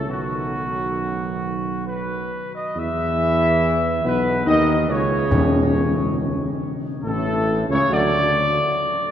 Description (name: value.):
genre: classical.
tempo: 70 BPM.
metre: 3/4.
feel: straight.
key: unclear.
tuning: A4 = 440 Hz.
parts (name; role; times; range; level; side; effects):
mellow trumpet section; melody; 0.0-9.1 s; F#4 to E5; -22 LUFS; equal; none.
clear trombone section; sustained chords; 0.0-8.2 s; A2 to A3; -28 LUFS; right 2 dB; none.
mellow French horn section; sustained chords; 0.0-8.2 s; A3 to F#4; -26 LUFS; left 3 dB; none.
mellow tuba; bass; 0.0-8.6 s; A1 to E2; -25 LUFS; right 2 dB; none.
timpani; percussion; 5.3-6.6 s; E2; -24 LUFS; left 2 dB; none.
room: wet cathedral reverb, RT60 4.7 s.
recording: none.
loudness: -18 LUFS.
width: side -9 dB against mid.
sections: 0.0-2.8 A section; 2.8-9.1 B section.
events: none.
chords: 0.1 B; 2.8 E5; 5.3 A/C#; 7.9 D.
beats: | 0.08 0.96 1.86 | 2.76 3.62 4.47 | 5.32 6.18 7.04 | 7.90 8.75.